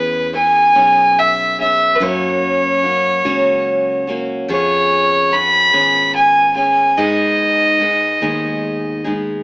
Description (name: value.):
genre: acoustic folk duo or small band.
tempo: 48 BPM (dotted quarters).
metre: 6/8.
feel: straight.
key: F# major.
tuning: A4 = 438 Hz.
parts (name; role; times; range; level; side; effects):
warm fiddle; melody; 0.0-9.0 s; B4 to B5; -13 LUFS; equal; none.
picked steel-string acoustic guitar; accompaniment; 0.0-9.4 s; F#2 to G#4; -20 LUFS; equal; none.
fingered electric bass; bass; 0.0-9.4 s; G#1 to G#2; -26 LUFS; equal; none.
room: moderate studio reverb, RT60 0.7 s.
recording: band playing live in one room, AM radio sound.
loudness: -12 LUFS.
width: side -24 dB against mid.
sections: 0.0-9.4 A section.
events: none.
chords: 0.0 E6; 2.0 F#; 4.5 C#7/E#; 7.0 G#m.